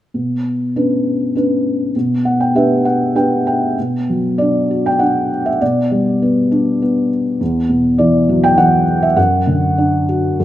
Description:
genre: classical, lyrical solo piano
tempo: 99 BPM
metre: 3/4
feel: rubato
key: B minor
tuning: A4 = 440 Hz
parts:
  - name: felt-muted upright piano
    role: solo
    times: 0.1-10.4 s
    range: E2 to G5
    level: -13 LUFS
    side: equal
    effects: none
room: moderate scoring stage reverb, RT60 1.8 s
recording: minimal, uncompressed stereo recording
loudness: -13 LUFS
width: side -13 dB against mid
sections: 0.1-3.8 A section; 3.8-10.4 B section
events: felt piano fill 1.9-3.8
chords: 0.1 Bmadd9; 1.9 G/B; 7.4 Esus2; 9.2 D/F#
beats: | 0.14 0.75 1.35 | 1.95 2.54 3.15 | 3.77 4.39 5.00 | 5.61 6.22 6.82 | 7.40 7.99 8.57 | 9.17 9.78 10.39

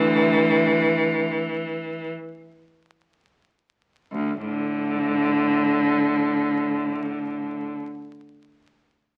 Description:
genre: classical, free, expressive piece for unaccompanied cello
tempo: free time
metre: none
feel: none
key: unclear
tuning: A4 = 440 Hz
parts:
  - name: rich cello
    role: solo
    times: 0.0-7.8 s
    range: D2 to E3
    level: -23 LUFS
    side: equal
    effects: none
room: moderate large studio reverb, RT60 0.9 s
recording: very old 78 rpm record, vinyl crackle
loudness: -23 LUFS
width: mono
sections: 0.0-4.1 A section; 4.1-8.9 B section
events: slowing down 0.0-4.1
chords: none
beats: free time

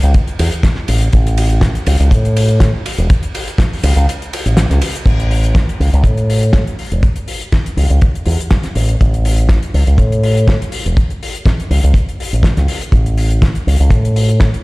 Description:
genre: nu-disco, nu disco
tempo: 122 BPM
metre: 4/4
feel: swing 54% on 16ths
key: A major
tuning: A4 = 440 Hz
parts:
  - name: fingered electric bass with an envelope filter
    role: bass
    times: 0.0-14.5 s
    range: E1 to A2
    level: -12 LUFS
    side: equal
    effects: none
  - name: damped 70s drum kit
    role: drums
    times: 0.0-14.6 s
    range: crash cymbal, hi-hat, ride cymbal, snare drum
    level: -21 LUFS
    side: left 1 dB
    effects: none
  - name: kick drum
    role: drums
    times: 0.1-14.5 s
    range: none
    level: -12 LUFS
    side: equal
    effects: none
room: little or no reverb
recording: played on a big sound system in a bare room, stone room reverb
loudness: -11 LUFS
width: side -23 dB against mid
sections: 0.0-5.1 A section; 5.1-14.6 B section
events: drop 0.0-5.1; kick drops out 4.1-5.1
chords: none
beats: 0.15 0.64 | 1.13 1.62 2.11 2.61 | 3.10 3.59 4.08 4.57 | 5.07 5.56 6.05 6.54 | 7.03 7.52 8.02 8.51 | 9.00 9.49 9.98 10.47 | 10.97 11.46 11.95 12.44 | 12.93 13.43 13.92 14.41

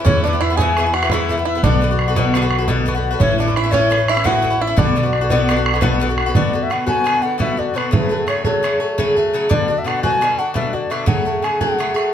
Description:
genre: celtic folk, Celtic slip jig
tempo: 114 BPM (dotted quarters)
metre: 9/8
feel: straight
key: B dorian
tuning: A4 = 445 Hz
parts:
  - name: bluegrass banjo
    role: second line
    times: 0.0-6.0 s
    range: C#4 to G#4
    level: -24 LUFS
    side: right 6 dB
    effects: none
  - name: Irish bouzouki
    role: accompaniment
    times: 0.0-12.1 s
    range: G#2 to G#4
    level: -19 LUFS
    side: left 2 dB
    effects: none
  - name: wooden flute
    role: melody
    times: 0.1-12.1 s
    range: B4 to G#5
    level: -20 LUFS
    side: left 1 dB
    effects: plate reverb
  - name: upright bass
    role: bass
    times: 0.1-6.3 s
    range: A1 to E2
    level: -21 LUFS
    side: equal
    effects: none
  - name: bodhran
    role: percussion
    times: 0.1-12.0 s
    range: none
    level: -20 LUFS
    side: right 2 dB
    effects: none
room: moderate small room reverb, RT60 0.5 s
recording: none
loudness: -15 LUFS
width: side -9 dB against mid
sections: 0.0-6.4 A section; 6.4-12.1 B section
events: none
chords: 0.1 E; 1.6 Bm; 3.2 A; 4.8 Bm; 7.9 F#madd9; 9.5 Bm; 11.1 F#madd9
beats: | 0.06 0.58 1.10 | 1.63 2.15 2.68 | 3.20 3.73 4.25 | 4.78 5.30 5.83 | 6.35 6.88 7.40 | 7.93 8.45 8.98 | 9.50 10.03 10.55 | 11.07 11.60 12.12

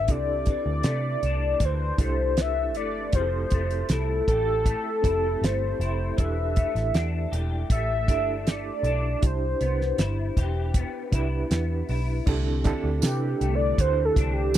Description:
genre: indie pop, bedroom pop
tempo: 79 BPM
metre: 4/4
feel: straight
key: C major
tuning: A4 = 439 Hz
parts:
  - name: warm velvety synth lead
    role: melody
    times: 0.0-14.6 s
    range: G4 to E5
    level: -27 LUFS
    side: left 1 dB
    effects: analog chorus, tape echo
  - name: electric guitar through a small old amp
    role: accompaniment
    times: 0.0-14.6 s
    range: C3 to G4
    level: -34 LUFS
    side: left 5 dB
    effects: ensemble chorus, warbly pitch drift
  - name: reed electric piano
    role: accompaniment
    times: 0.0-14.6 s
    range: C4 to B4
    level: -34 LUFS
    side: right 6 dB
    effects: fast tremolo, cassette tape
  - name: vintage muted picked electric bass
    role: bass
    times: 0.0-14.6 s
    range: E1 to C3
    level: -27 LUFS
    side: equal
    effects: none
  - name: damped 70s drum kit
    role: drums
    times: 0.1-14.6 s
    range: crash cymbal, hi-hat, kick drum, snare drum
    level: -24 LUFS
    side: equal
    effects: none
  - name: hollow soft pad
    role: sustained chords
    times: 12.2-14.6 s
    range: D3 to G4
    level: -34 LUFS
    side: equal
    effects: chorus
  - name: tambourine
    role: percussion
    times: 13.0-14.6 s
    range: none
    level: -33 LUFS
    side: right 20 dB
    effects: none
room: little or no reverb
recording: dry, close 1970s-style studio recording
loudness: -23 LUFS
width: side -12 dB against mid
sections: 0.0-12.3 A section; 12.3-14.6 B section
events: soft synth lead solo 12.3-14.6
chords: 0.1 C69; 3.1 Fmaj9; 6.2 Gsus2/E; 9.2 Cmaj7; 12.3 C69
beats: | 0.09 0.85 1.61 2.38 | 3.14 3.90 4.66 5.42 | 6.18 6.95 7.71 8.47 | 9.23 9.99 10.75 11.51 | 12.27 13.03 13.79 14.55

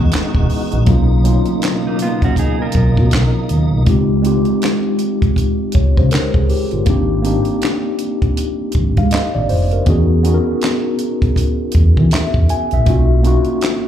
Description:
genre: R&B, neo-soul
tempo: 80 BPM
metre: 4/4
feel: swing 61% on 16ths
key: unclear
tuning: A4 = 439 Hz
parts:
  - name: mellow tine electric piano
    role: accompaniment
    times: 0.0-13.9 s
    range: Gb3 to G#5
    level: -18 LUFS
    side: left 1 dB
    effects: medium stereo tremolo, slapback echo
  - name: tonewheel organ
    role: sustained chords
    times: 0.0-3.8 s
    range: Cb3 to F#4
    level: -24 LUFS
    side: equal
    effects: chorus vibrato, fast rotary speaker
  - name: smooth gliding synth bass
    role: bass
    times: 0.0-13.5 s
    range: E1 to E3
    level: -14 LUFS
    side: equal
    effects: none
  - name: compact cocktail drum kit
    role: drums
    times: 0.1-13.8 s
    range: handclaps, hi-hat, kick drum, snare drum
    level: -17 LUFS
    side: equal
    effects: none
  - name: mellow electric guitar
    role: second line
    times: 1.9-3.7 s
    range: Bb3 to Bb4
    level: -24 LUFS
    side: right 5 dB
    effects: tremolo, slapback echo
room: small room ambience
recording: live gig heard through the venue's PA, club reverb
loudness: -13 LUFS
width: side -10 dB against mid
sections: 0.0-3.9 A section; 3.9-13.9 A section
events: none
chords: 0.0 Emaj9; 0.9 Cbmaj9; 3.9 Dbmaj9; 6.9 Abmaj9; 9.9 Emaj9; 12.9 Cbmaj9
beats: 0.12 | 0.87 1.62 2.37 3.12 | 3.87 4.62 5.37 6.12 | 6.87 7.62 8.37 9.12 | 9.87 10.62 11.37 12.12 | 12.87 13.62

